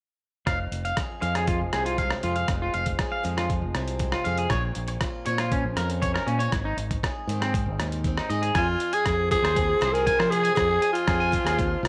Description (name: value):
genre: highlife guitar band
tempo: 119 BPM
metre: 4/4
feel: straight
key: F minor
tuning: A4 = 440 Hz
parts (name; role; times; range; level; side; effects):
- picked steel-string acoustic guitar; accompaniment; 0.5-11.9 s; F2 to Ab4; -36 LUFS; equal; none
- electric guitar at the edge of break-up; arpeggios; 0.5-11.6 s; C4 to Ab5; -31 LUFS; equal; spring reverb, slapback echo
- fingered electric bass; bass; 0.5-11.9 s; F1 to F3; -31 LUFS; equal; none
- dusty soul sampler-style drum kit; drums; 0.5-11.9 s; hi-hat, kick drum, rim click; -32 LUFS; equal; none
- raspy alto saxophone; melody; 8.6-11.9 s; F4 to Bb4; -26 LUFS; equal; slapback echo
room: light reverb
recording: none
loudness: -25 LUFS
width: mono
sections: 0.5-8.6 A section; 8.6-11.9 B section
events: none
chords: 0.5 Fm; 4.5 Bbmadd9; 6.5 Ab; 8.6 Fm